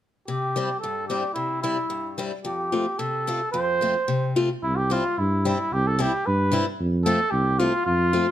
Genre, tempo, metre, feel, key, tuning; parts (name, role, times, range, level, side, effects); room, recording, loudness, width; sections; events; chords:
alpine folk, alpine dance band; 111 BPM; 2/4; straight; C major; A4 = 439 Hz
mellow trumpet; melody; 0.3-8.3 s; E4 to C5; -24 LUFS; right 1 dB
picked steel-string acoustic guitar; accompaniment; 0.3-8.3 s; F2 to F4; -26 LUFS; left 3 dB
mellow tuba; bass; 4.6-8.2 s; C2 to G2; -24 LUFS; right 1 dB
light reverb; close, detailed microphones; -22 LUFS; side -12 dB against mid
0.3-4.6 A section; 4.6-8.3 B section
0.3 C; 2.5 F; 4.6 C; 6.8 F